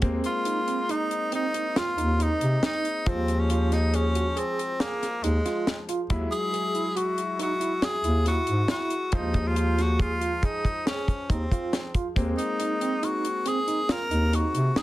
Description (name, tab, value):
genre	progressive instrumental, band music in an uneven meter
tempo	139 BPM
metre	7/4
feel	straight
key	unclear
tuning	A4 = 441 Hz
part	bright concert grand piano	accompaniment	0.0-14.8 s	F3 to C5	-34 LUFS	left 4 dB	none
part	overdriven tine electric piano	arpeggios	0.0-14.8 s	C4 to Ab4	-32 LUFS	right 4 dB	fast tremolo, digital delay
part	mellow bass clarinet	bass	0.0-14.7 s	Eb2 to C3	-25 LUFS	equal	none
part	deep reggae drum kit	drums	0.0-14.8 s	hi-hat, kick drum, snare drum	-28 LUFS	equal	none
part	clear tenor saxophone	melody	0.3-14.8 s	Ab3 to Bb4	-28 LUFS	equal	none
room	moderate studio reverb, RT60 0.6 s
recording	dense, heavily limited modern master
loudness	-23 LUFS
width	side -16 dB against mid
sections	0.0-14.8 A section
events	none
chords	0.0 Abadd9/Eb; 3.1 Fm/Eb; 6.1 Eadd9/Eb; 9.1 Fm/Eb; 12.2 Abadd9/Eb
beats	| 0.03 0.46 0.90 1.33 1.76 2.20 2.63 | 3.06 3.50 3.93 4.37 4.80 5.23 5.67 | 6.10 6.53 6.96 7.40 7.83 8.26 8.70 | 9.13 9.56 9.99 10.43 10.86 11.29 11.72 | 12.16 12.59 13.02 13.46 13.89 14.32 14.76